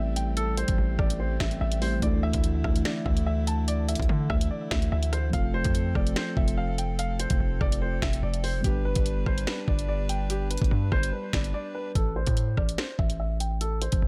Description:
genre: hip hop, drill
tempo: 145 BPM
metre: 4/4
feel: half-time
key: A minor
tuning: A4 = 440 Hz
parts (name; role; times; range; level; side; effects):
- dark baby grand piano; melody; 0.0-14.1 s; G4 to A5; -36 LUFS; equal; low-pass filter, tape echo
- mellow tine electric piano; accompaniment; 0.0-12.0 s; E3 to B4; -36 LUFS; equal; low-pass filter, tape echo
- pedal harmonium; sustained chords; 0.0-11.9 s; D3 to B4; -42 LUFS; equal; none
- distorted 808-style bass; bass; 0.0-14.1 s; F1 to D3; -30 LUFS; equal; distortion
- drill drum kit; drums; 0.2-14.0 s; finger snaps, hi-hat, kick drum, rim click, snare drum; -30 LUFS; equal; none
room: digital ambience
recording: echo-heavy mix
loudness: -27 LUFS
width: mono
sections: 0.0-12.0 A section; 12.0-14.1 B section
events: break 11.5-12.0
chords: 0.0 Am7; 2.0 Dsus2; 5.3 F; 8.6 G; 12.0 Am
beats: | 0.37 0.78 1.20 1.61 | 2.02 2.44 2.85 3.27 | 3.68 4.09 4.51 4.92 | 5.33 5.75 6.16 6.58 | 6.99 7.40 7.82 8.23 | 8.64 9.06 9.47 9.88 | 10.30 10.71 11.13 11.54 | 11.95 12.37 12.78 13.20 | 13.61 14.02

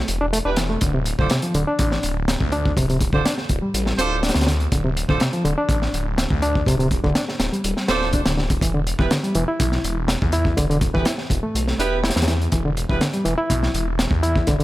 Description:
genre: breakbeat, breaks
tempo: 123 BPM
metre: 4/4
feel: straight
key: E phrygian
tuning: A4 = 439 Hz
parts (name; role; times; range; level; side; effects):
- barky reed electric piano; riff; 0.0-14.6 s; C3 to E4; -23 LUFS; equal; fast tremolo, tube saturation, digital delay
- phased detuned saw bass; bass; 0.0-14.6 s; D1 to E2; -24 LUFS; equal; phaser
- crunchy breakbeat drum kit; drums; 0.1-14.6 s; hi-hat, kick drum, snare drum; -22 LUFS; equal; none
- clear horn section; stabs; 0.5-13.0 s; B3 to C5; -26 LUFS; right 4 dB; digital delay
room: small room ambience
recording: none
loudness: -18 LUFS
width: side -16 dB against mid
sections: 0.0-14.6 A section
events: none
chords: 0.0 Em; 0.8 Dm7; 8.6 Em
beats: 0.33 | 0.82 1.30 1.79 2.28 | 2.77 3.25 3.74 4.23 | 4.72 5.21 5.69 6.18 | 6.67 7.16 7.64 8.13 | 8.62 9.11 9.60 10.08 | 10.57 11.06 11.55 12.04 | 12.52 13.01 13.50 13.99 | 14.47

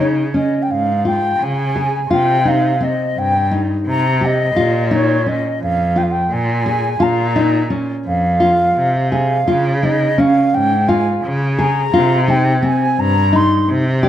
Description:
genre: contemporary instrumental, chamber music in an uneven meter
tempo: 171 BPM (eighths)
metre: 7/8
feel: straight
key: Bb dorian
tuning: A4 = 439 Hz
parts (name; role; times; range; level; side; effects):
- baroque flute; melody; 0.0-14.1 s; Db5 to C6; -18 LUFS; equal; none
- nylon-string guitar; arpeggios; 0.0-14.1 s; C4 to Ab4; -18 LUFS; left 1 dB; none
- rich cello; bass; 0.0-14.1 s; F2 to Db3; -18 LUFS; equal; none
room: light reverb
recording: close, detailed microphones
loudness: -13 LUFS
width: side -11 dB against mid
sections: 0.0-14.1 A section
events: none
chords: 0.0 Db; 2.1 Cm; 4.6 Bbm; 9.5 Db; 11.9 Cm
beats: 0.34 0.69 1.05 1.40 1.75 | 2.10 2.46 2.81 3.16 3.51 3.87 4.22 | 4.57 4.92 5.26 5.61 5.96 6.31 6.66 | 7.01 7.36 7.71 8.06 8.41 8.77 9.12 | 9.48 9.84 10.19 10.54 10.89 11.24 11.59 | 11.94 12.29 12.63 12.98 13.33 13.68 14.02

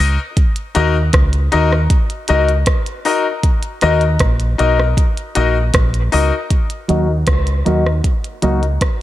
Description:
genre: dub reggae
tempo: 78 BPM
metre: 4/4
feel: straight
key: Eb minor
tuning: A4 = 440 Hz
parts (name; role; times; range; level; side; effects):
- bright grand piano; stabs; 0.0-8.6 s; Eb4 to Eb5; -18 LUFS; left 5 dB; high-pass filter, low-pass filter, dub echo
- deep dub fingered electric bass; bass; 0.0-8.8 s; Bb1 to Eb2; -15 LUFS; equal; none
- glitchy drum kit; drums; 0.4-9.0 s; hi-hat, kick drum, rim click; -16 LUFS; equal; none
- clean electric guitar; accompaniment; 6.9-8.6 s; Gb3 to Gb4; -20 LUFS; right 4 dB; low-pass filter, dub echo
room: light reverb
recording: none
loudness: -13 LUFS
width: side -14 dB against mid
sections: 0.0-6.5 A section; 6.5-9.0 B section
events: break 0.0-6.5; filter sweep 6.5-9.0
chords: 0.0 Ebm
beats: | 0.37 1.14 1.90 2.67 | 3.44 4.20 4.97 5.74 | 6.51 7.28 8.04 8.81

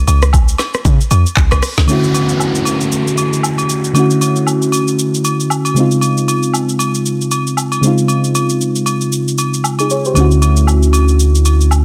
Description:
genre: amapiano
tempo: 116 BPM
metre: 4/4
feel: swing 58% on 16ths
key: unclear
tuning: A4 = 437 Hz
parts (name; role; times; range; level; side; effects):
- deep log drum bass; bass; 0.0-1.9 s; B#1 to C#3; -15 LUFS; equal; none
- smooth R&B drum kit; drums; 0.1-11.8 s; handclaps, hi-hat, kick drum, rim click, shaker, snare drum; -20 LUFS; equal; soft clipping on snare
- agogo bells and woodblock; percussion; 0.1-11.8 s; none; -24 LUFS; equal; none
- mellow FM electric piano; accompaniment; 1.9-11.8 s; C#3 to C#5; -16 LUFS; equal; chorus
- downlifter; sound effects; 1.9-6.0 s; none; -27 LUFS; equal; none
- saturated sub bass; bass; 10.2-11.8 s; D2; -12 LUFS; equal; none
room: light reverb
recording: dense, heavily limited modern master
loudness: -14 LUFS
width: mono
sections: 0.0-1.9 A section; 1.9-11.8 B section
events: drop 0.0-1.9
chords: 0.0 N.C.; 1.9 Dmaj9; 5.8 C#maj9; 10.2 Dmaj9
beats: 0.33 0.85 1.37 | 1.89 2.40 2.92 3.44 | 3.96 4.47 4.99 5.51 | 6.02 6.54 7.06 7.58 | 8.09 8.61 9.13 9.64 | 10.16 10.68 11.20 11.71

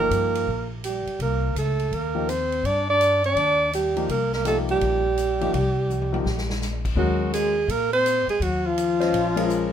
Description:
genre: modal jazz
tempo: 166 BPM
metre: 4/4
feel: swing 65% on 8ths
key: unclear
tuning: A4 = 435 Hz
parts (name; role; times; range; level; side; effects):
- breathy alto saxophone; melody; 0.0-9.7 s; F4 to D5; -23 LUFS; right 3 dB; none
- mellow trombone; second line; 0.0-9.7 s; F3 to D4; -28 LUFS; left 4 dB; none
- warm upright piano; accompaniment; 0.0-9.7 s; F3 to Eb5; -27 LUFS; left 6 dB; none
- upright bass; bass; 0.0-9.7 s; Bb1 to Bb2; -28 LUFS; left 1 dB; none
- swinging big-band drum kit; drums; 0.1-9.6 s; crash cymbal, hi-hat, kick drum, ride cymbal, snare drum, toms; -35 LUFS; equal; none
room: moderate club reverb, RT60 0.7 s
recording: minimal, uncompressed stereo recording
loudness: -21 LUFS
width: side -9 dB against mid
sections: 0.0-7.0 A section; 7.0-9.7 B section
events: drum fill 5.9-6.6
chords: 0.0 Eb; 1.2 Cm9; 4.1 Eb; 7.0 Ebm69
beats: 0.12 0.48 0.84 | 1.20 1.56 1.92 2.28 | 2.64 3.00 3.37 3.73 | 4.09 4.45 4.81 5.17 | 5.53 5.89 6.25 6.61 | 6.97 7.33 7.69 8.05 | 8.41 8.77 9.13 9.49

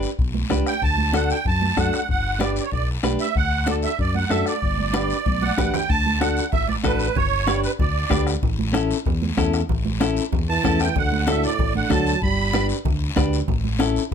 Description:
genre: latin, cumbia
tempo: 190 BPM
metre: 4/4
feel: straight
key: D major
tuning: A4 = 440 Hz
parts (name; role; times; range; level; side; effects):
- clean electric guitar; accompaniment; 0.0-14.0 s; C#4 to B4; -24 LUFS; left 2 dB; none
- smooth synth bass; bass; 0.0-14.1 s; G1 to F#2; -24 LUFS; equal; none
- guiro; percussion; 0.0-14.1 s; none; -34 LUFS; left 8 dB; none
- bombo; percussion; 0.2-14.1 s; none; -26 LUFS; left 2 dB; none
- congas; percussion; 0.2-14.1 s; none; -29 LUFS; right 7 dB; none
- musette accordion; melody; 0.7-8.2, 10.5-12.7 s; B4 to B5; -24 LUFS; right 5 dB; none
- dark trombone; second line; 10.5-12.7 s; A2 to G3; -27 LUFS; right 7 dB; none
room: light reverb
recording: close, detailed microphones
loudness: -19 LUFS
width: side -7 dB against mid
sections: 0.0-5.9 A section; 5.9-14.1 B section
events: drum fill 5.3-5.9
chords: 0.0 G; 0.8 D; 2.1 G; 3.4 D; 4.6 G; 5.9 D; 7.2 G; 8.4 A; 11.0 D; 12.2 G; 13.5 A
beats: 0.19 0.51 | 0.82 1.14 1.46 1.77 | 2.09 2.41 2.72 3.04 | 3.36 3.68 3.99 4.31 | 4.63 4.94 5.26 5.58 | 5.89 6.21 6.53 6.84 | 7.16 7.48 7.79 8.11 | 8.43 8.74 9.06 9.38 | 9.69 10.01 10.33 10.64 | 10.96 11.28 11.59 11.91 | 12.22 12.54 12.85 13.17 | 13.49 13.80 14.12

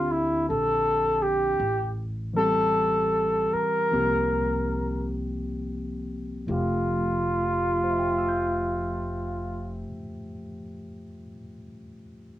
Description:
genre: jazz ballad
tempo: 44-56 BPM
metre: 4/4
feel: swing 67% on 8ths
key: F major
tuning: A4 = 440 Hz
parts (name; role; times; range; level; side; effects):
- trumpet with bucket mute; melody; 0.0-9.9 s; E4 to Bb4; -24 LUFS; equal; cassette tape
- tine electric piano; accompaniment; 0.0-12.4 s; F2 to G6; -31 LUFS; left 1 dB; overdrive, cassette tape
- upright bass; bass; 0.0-9.8 s; F1 to D2; -34 LUFS; equal; none
room: moderate small room reverb, RT60 0.5 s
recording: home recording on cassette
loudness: -23 LUFS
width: side -13 dB against mid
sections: 0.0-6.5 A section; 6.5-11.8 B section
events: slowing down 0.0-6.5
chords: 0.0 D7sus4; 1.6 Am7; 3.9 C7sus4; 6.5 Fmaj9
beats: 0.49 | 1.59 2.74 3.93 5.18 | 6.49 7.83 9.16 10.49

